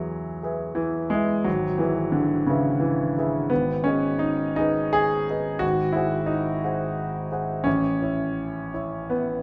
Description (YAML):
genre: classical, romantic character piece for solo piano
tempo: 87 BPM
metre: 3/4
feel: uneven beats, rubato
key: unclear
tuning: A4 = 440 Hz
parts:
  - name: warm grand piano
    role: solo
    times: 0.0-9.4 s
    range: G#1 to F#5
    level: -25 LUFS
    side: equal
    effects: none
room: moderate recital hall reverb, RT60 1.3 s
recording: none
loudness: -25 LUFS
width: mono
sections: 0.0-9.4 A section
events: none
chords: 0.0 E; 1.5 E/G#; 3.5 G#m; 5.6 G#7; 7.7 A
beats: 0.07 0.77 | 1.47 2.14 2.81 | 3.50 4.20 4.95 | 5.62 6.30 6.98 | 7.66 8.37 9.12